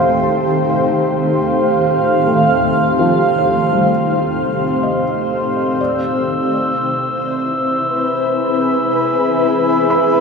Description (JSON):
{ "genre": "ambient", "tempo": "62 BPM", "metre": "4/4", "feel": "straight", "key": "unclear", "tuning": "A4 = 440 Hz", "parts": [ { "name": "granular cloud pad", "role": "sustained chords", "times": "0.0-10.2 s", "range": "Eb3 to F5", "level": "-14 LUFS", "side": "equal", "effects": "built-in reverb, shimmer reverb" }, { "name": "felt-muted upright piano", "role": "arpeggios", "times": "0.0-10.2 s", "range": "F3 to B5", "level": "-22 LUFS", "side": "left 1 dB", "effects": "ping-pong delay, shimmer reverb" }, { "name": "glass harmonica", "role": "texture", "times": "0.0-10.2 s", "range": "C6 to E6", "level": "-23 LUFS", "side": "left 2 dB", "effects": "shimmer reverb" } ], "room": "wet cathedral reverb, RT60 5.4 s", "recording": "none", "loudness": "-13 LUFS", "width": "side -5 dB against mid", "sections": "0.0-10.2 A section", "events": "none", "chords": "0.0 Ebmaj7; 5.8 E7" }